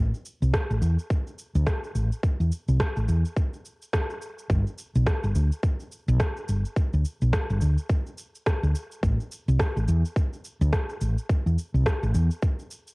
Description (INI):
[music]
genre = organic downtempo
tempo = 106 BPM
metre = 4/4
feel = swing 59% on 16ths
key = A minor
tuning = A4 = 440 Hz
[part]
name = woody fretless electric bass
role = bass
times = 0.0-12.3 s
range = G1 to E2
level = -22 LUFS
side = equal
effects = none
[part]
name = electronic cabasa and rim click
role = drums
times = 0.1-12.9 s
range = none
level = -33 LUFS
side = equal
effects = overdrive, cassette tape
[part]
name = electronic kick drum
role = drums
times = 0.5-12.6 s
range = none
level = -25 LUFS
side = equal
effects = overdrive, cassette tape
[sound]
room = little or no reverb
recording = home recording on cassette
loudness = -23 LUFS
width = side -28 dB against mid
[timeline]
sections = 0.0-12.9 A section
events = none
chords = none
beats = 0.54 1.11 1.67 | 2.24 2.80 3.37 3.94 | 4.50 5.07 5.63 6.20 | 6.77 7.33 7.90 8.46 | 9.03 9.60 10.16 10.73 | 11.29 11.86 12.43